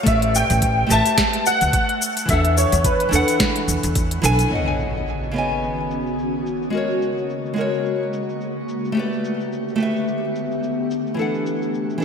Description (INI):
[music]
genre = sunset chillout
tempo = 108 BPM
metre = 4/4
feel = swing 57% on 16ths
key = C# minor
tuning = A4 = 440 Hz
[part]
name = nylon-string guitar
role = accompaniment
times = 0.0-12.0 s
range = C#3 to G#5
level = -23 LUFS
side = equal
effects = auto-pan, ping-pong delay, shimmer reverb
[part]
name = warm concert grand piano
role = melody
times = 0.1-4.2 s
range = B4 to A5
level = -21 LUFS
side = left 1 dB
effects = ensemble chorus, ping-pong delay, shimmer reverb
[part]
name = upright bass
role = bass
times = 0.1-4.4 s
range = A1 to E2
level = -21 LUFS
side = equal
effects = tube saturation
[part]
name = electronic kick drum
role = drums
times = 0.1-4.1 s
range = none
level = -23 LUFS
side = equal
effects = overdrive
[part]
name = smooth R&B drum kit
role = drums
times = 0.1-12.0 s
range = cabasa, hi-hat, snare drum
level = -23 LUFS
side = left 1 dB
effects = overdrive, low-pass filter on hats, low-pass filter on perc, low-pass filter on snare, gated reverb
[part]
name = ethereal airy pad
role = sustained chords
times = 5.2-12.0 s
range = C#3 to G4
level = -25 LUFS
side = left 2 dB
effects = ensemble chorus, built-in reverb, shimmer reverb
[part]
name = impact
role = sound effects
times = 4.5-6.7 s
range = none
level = -29 LUFS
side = equal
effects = none
[sound]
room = wet lush hall reverb, RT60 1.7 s, studio ambience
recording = bright 1980s-style digital production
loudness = -18 LUFS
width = side -6 dB against mid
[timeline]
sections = 0.0-4.5 A section; 4.5-12.0 B section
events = impact 4.5-6.7; filter sweep on ambient pad 4.5-12.0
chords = 0.1 A9sus4; 2.3 E9sus4; 4.5 C#9sus4; 6.5 G#9sus4; 9.0 A9sus4; 11.2 E9sus4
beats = | 0.07 0.62 1.18 1.74 | 2.29 2.85 3.40 3.96 | 4.51 5.07 5.62 6.18 | 6.74 7.29 7.85 8.40 | 8.96 9.51 10.07 10.62 | 11.18 11.74